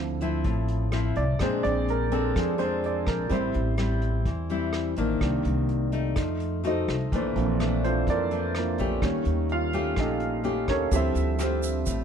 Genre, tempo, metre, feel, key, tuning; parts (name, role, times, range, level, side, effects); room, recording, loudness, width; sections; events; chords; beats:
bossa nova; 126 BPM; 4/4; straight; A4 = 440 Hz
nylon-string guitar; accompaniment; 0.0-12.0 s; F2 to G4; -29 LUFS; left 5 dB
warm grand piano; accompaniment; 0.0-12.0 s; Eb3 to F5; -29 LUFS; right 5 dB
upright bass; bass; 0.0-12.0 s; A1 to F2; -28 LUFS; equal
vintage brush drum kit; drums; 0.2-12.0 s; hi-hat, kick drum, rim click; -32 LUFS; equal
tube shaker; percussion; 10.9-12.0 s; -39 LUFS; right 9 dB
little or no reverb; close, detailed microphones; -24 LUFS; side -8 dB against mid
0.0-12.0 A section
grand piano solo 0.0-12.0
0.0 Dm9; 1.4 Bb9; 3.3 Am7; 5.2 Cm9; 6.2 F7b9; 7.1 Bbmaj9#11; 9.0 Eb7#11; 10.9 Dm11
0.46 0.93 | 1.41 1.88 2.36 2.83 | 3.31 3.79 4.26 4.74 | 5.21 5.69 6.17 6.64 | 7.12 7.59 8.07 8.54 | 9.02 9.49 9.97 10.45 | 10.92 11.40 11.87